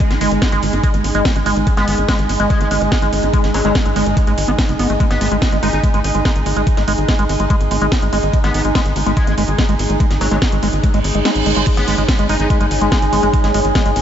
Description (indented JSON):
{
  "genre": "psychedelic trance",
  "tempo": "144 BPM",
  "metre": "4/4",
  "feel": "straight",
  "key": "unclear",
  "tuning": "A4 = 438 Hz",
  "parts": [
    { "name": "liquid acid bass", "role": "riff", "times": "0.0-13.9 s", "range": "G#3 to D#4", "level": "-20 LUFS", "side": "equal", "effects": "phaser, auto-pan, sidechain pumping, analog delay" },
    { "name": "electronic kick drum", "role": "drums", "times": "0.0-13.8 s", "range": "none", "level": "-16 LUFS", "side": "equal", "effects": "none" },
    { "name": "techno drum kit", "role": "drums", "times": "0.0-14.0 s", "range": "crash cymbal, hi-hat, snare drum", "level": "-23 LUFS", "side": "equal", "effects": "none" },
    { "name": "warbly tape-like pad", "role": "texture", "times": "0.0-14.0 s", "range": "D#4 to G#5", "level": "-22 LUFS", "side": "right 2 dB", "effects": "chorus, built-in reverb, sidechain pumping" },
    { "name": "tight sequencer bass", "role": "bass", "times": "0.1-14.0 s", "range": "F#1 to A1", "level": "-20 LUFS", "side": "equal", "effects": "none" },
    { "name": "metallic wobble bass", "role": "second line", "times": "1.8-5.8, 8.4-12.5 s", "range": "F#3 to D#4", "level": "-29 LUFS", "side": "left 2 dB", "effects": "distortion, chorus, cassette tape, sidechain pumping, high-pass filter, diffuse ambient delay" },
    { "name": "reverse cymbal", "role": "sound effects", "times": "11.0-11.7 s", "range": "none", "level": "-27 LUFS", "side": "right 5 dB", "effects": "none" },
    { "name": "evolving wavetable pad", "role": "sustained chords", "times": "12.0-14.0 s", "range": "G#4", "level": "-20 LUFS", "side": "right 1 dB", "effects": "phaser, built-in reverb, sidechain pumping" }
  ],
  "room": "moderate huge ambient reverb, RT60 7.5 s",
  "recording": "dreamy mix soaked in reverb, nothing above 7.8 kHz",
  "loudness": "-13 LUFS",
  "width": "side -9 dB against mid",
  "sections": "0.0-14.0 A section",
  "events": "filter sweep on acid bass 0.0-14.0; reverse cymbal 11.0-11.7; kick drops out 11.3-11.7",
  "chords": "0.0 G#5",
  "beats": "| 0.00 0.42 0.84 1.25 | 1.67 2.09 2.50 2.92 | 3.34 3.75 4.17 4.59 | 5.00 5.42 5.84 6.25 | 6.67 7.09 7.50 7.92 | 8.34 8.75 9.17 9.59 | 10.00 10.42 10.84 11.25 | 11.67 12.09 12.50 12.92 | 13.34 13.75"
}